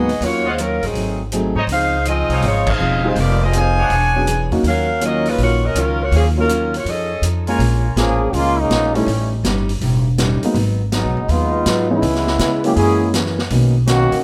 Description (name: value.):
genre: jazz, big band swing.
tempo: 162 BPM.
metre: 4/4.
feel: swing 66% on 8ths.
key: Eb minor.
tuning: A4 = 440 Hz.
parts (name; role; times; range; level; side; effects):
mellow saxophone section; melody; 0.0-7.2 s; F3 to Ab5; -21 LUFS; equal; none.
picked steel-string acoustic guitar; accompaniment; 0.0-14.1 s; Gb2 to C#5; -28 LUFS; equal; none.
warm grand piano; accompaniment; 0.0-13.7 s; Fb3 to Bb4; -24 LUFS; equal; none.
upright bass; bass; 0.0-14.1 s; Fb1 to Db3; -21 LUFS; equal; none.
vintage drum kit; drums; 0.1-14.2 s; crash cymbal, hi-hat, kick drum, snare drum; -28 LUFS; equal; none.
clear trumpet section; stabs; 0.5-4.3, 7.5-7.9 s; D4 to G#5; -28 LUFS; equal; none.
bright trombone section; second line; 8.0-14.2 s; D#3 to Ab4; -21 LUFS; equal; none.
room: light reverb.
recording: none.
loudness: -17 LUFS.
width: mono.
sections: 0.0-7.6 A section; 7.6-14.2 B section.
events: band accent 2.6; trombone section solo 7.6-14.2.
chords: 0.2 Ebm9; 0.9 Ab7b9; 1.7 Dbmaj9; 3.2 Fm7; 3.9 E13; 4.6 Ebm9; 6.9 F7alt; 7.6 Bbm7; 9.1 A7#11; 10.6 Abm7; 12.0 Dbm7; 12.8 Gb7; 13.5 Bmaj9.